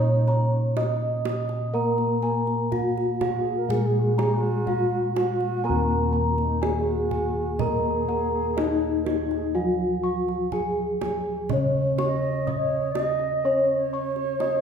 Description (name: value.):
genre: Javanese gamelan.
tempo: 62 BPM.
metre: 4/4.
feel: straight.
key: Eb slendro.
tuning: A4 = 440 Hz.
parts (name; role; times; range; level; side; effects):
gamelan-type bronze metallophone; melody; 0.0-14.6 s; Eb4 to Eb5; -26 LUFS; left 1 dB; none.
bright reedy low xiao; second line; 0.0-14.6 s; Eb4 to Eb5; -30 LUFS; right 5 dB; none.
gamelan-type bronze metallophone; accompaniment; 0.0-14.6 s; Gb3-45c to Db4-25c; -32 LUFS; left 2 dB; none.
gamelan-type bossed gongs; arpeggios; 0.0-14.6 s; Eb5 to Db6-25c; -35 LUFS; left 4 dB; none.
gamelan-type bronze metallophone; arpeggios; 0.0-14.6 s; Eb5 to Eb6; -32 LUFS; right 2 dB; none.
gamelan-type bossed gongs; bass; 0.0-14.6 s; Eb2 to Db5-25c; -27 LUFS; equal; none.
kendang; percussion; 0.3-14.6 s; none; -33 LUFS; right 4 dB; none.
room: wet recital hall reverb, RT60 1.5 s.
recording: recorded in a church or concert hall.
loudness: -22 LUFS.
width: side -7 dB against mid.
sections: 0.0-14.6 A section.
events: none.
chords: none.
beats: 0.77 | 1.75 2.72 3.70 4.67 | 5.65 6.62 7.60 8.58 | 9.55 10.53 11.50 12.48 | 13.45 14.42.